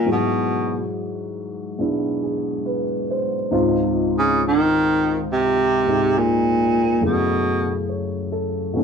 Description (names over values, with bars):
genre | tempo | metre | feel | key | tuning
jazz ballad | 69 BPM | 4/4 | swing 69% on 8ths | unclear | A4 = 440 Hz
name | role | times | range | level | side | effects
warm baritone saxophone | melody | 0.0-7.9 s | Bb2 to Eb3 | -18 LUFS | right 1 dB | plate reverb
dark grand piano | accompaniment | 0.0-8.8 s | Db2 to Db5 | -22 LUFS | left 1 dB | none
room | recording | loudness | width
wet club reverb, RT60 0.6 s | none | -18 LUFS | side -6 dB against mid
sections
0.0-8.8 A section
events
none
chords
0.1 Ab7alt; 3.5 Dbmaj9; 7.0 Gbm7